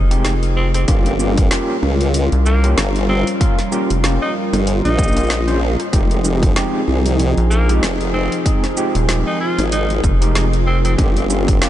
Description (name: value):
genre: glitch hop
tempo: 95 BPM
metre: 4/4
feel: swing 57% on 16ths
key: F minor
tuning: A4 = 439 Hz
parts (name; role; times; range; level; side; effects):
- warm analog pad; sustained chords; 0.0-11.7 s; F3 to Bb4; -23 LUFS; equal; chorus, sidechain pumping
- rubbery square bass; bass; 0.0-11.0 s; Eb1 to C2; -16 LUFS; equal; none
- granular cloud pad; texture; 0.0-11.7 s; F4 to G5; -28 LUFS; right 1 dB; built-in reverb, sidechain pumping
- overdriven tine electric piano; stabs; 0.1-11.7 s; Ab3 to C5; -24 LUFS; equal; fast tremolo, vintage 12-bit sampler grit, sidechain pumping, ping-pong delay
- drum and bass drum kit; drums; 0.1-11.7 s; hi-hat, rim click, shaker, snare drum; -25 LUFS; equal; overdrive
- raspy tenor saxophone; melody; 0.6-10.9 s; Bb3 to F4; -26 LUFS; equal; ping-pong delay
- formant-sweep wobble bass; bass; 0.9-11.6 s; F1 to Db2; -17 LUFS; equal; chorus, tube saturation
- electronic kick drum; drums; 0.9-11.6 s; none; -16 LUFS; equal; none
room: light reverb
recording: nothing above 10.6 kHz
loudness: -14 LUFS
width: side -12 dB against mid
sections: 0.0-11.7 A section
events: none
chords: 0.0 Fm7; 0.9 Gm7b5; 5.9 Fm7; 11.0 Gm7b5